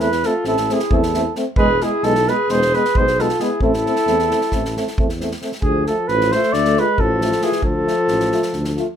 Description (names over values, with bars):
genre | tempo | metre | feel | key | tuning
balkan folk, Balkan brass band | 267 BPM (eighths) | 9/8 | straight | unclear | A4 = 440 Hz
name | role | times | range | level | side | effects
mellow flugelhorn | melody | 0.0-8.9 s | G#4 to D5 | -19 LUFS | right 1 dB | none
dark alto saxophone | second line | 0.0-8.9 s | E3 to G#4 | -24 LUFS | left 4 dB | none
warm French horn | accompaniment | 0.0-8.9 s | B3 to F4 | -26 LUFS | left 5 dB | none
warm euphonium | accompaniment | 0.0-8.9 s | G#3 to A3 | -25 LUFS | right 3 dB | none
mellow tuba | bass | 0.0-8.8 s | E1 to E2 | -23 LUFS | equal | none
unplugged drum kit | percussion | 0.0-8.8 s | kick drum, snare drum | -24 LUFS | equal | none
room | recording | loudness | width
light reverb | minimal, uncompressed stereo recording | -16 LUFS | side -9 dB against mid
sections
0.0-5.6 A section; 5.6-9.0 B section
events
none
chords
0.0 Am; 1.6 E; 3.6 Am; 5.6 Dm